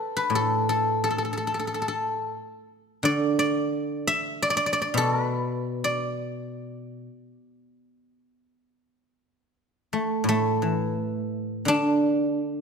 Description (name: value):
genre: chinese traditional, Chinese solo plucked strings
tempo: 78-89 BPM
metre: 4/4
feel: rubato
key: unclear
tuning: A4 = 440 Hz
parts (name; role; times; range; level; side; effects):
- guzheng; solo; 0.0-12.6 s; A2 to E5; -23 LUFS; equal; none
room: moderate recital hall reverb, RT60 1.6 s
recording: none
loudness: -23 LUFS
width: side -6 dB against mid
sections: 0.0-8.8 A section; 8.8-12.6 B section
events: none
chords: none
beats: | 0.31 1.01 1.69 2.37 | 3.04 3.74 4.44 5.14 | 5.84 6.54 7.26 8.01 | 8.78 9.53 10.27 10.98 | 11.68 12.38